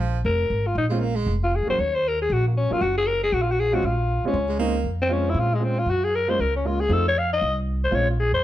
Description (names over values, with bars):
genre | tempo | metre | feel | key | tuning
jazz, small-group swing and bop | 235 BPM | 4/4 | swing 59% on 8ths | Bb minor | A4 = 440 Hz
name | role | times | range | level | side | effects
bright baritone saxophone | second line | 0.0-1.3, 4.5-4.9 s | F3 to Bb3 | -28 LUFS | right 5 dB | none
upright bass | bass | 0.0-8.4 s | F1 to Bb2 | -25 LUFS | equal | none
growling alto saxophone | melody | 0.3-8.4 s | Ab3 to F5 | -22 LUFS | left 2 dB | none
warm baby grand piano | accompaniment | 0.9-8.1 s | Gb3 to Gb4 | -29 LUFS | right 2 dB | none
room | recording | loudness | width
light reverb | dark, warm production | -20 LUFS | side -13 dB against mid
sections
0.0-8.4 A section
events
none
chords
0.0 Bbm7; 1.8 Ebm; 3.8 Bbm7; 5.9 Gbmaj7; 6.9 F7; 7.9 Bbm7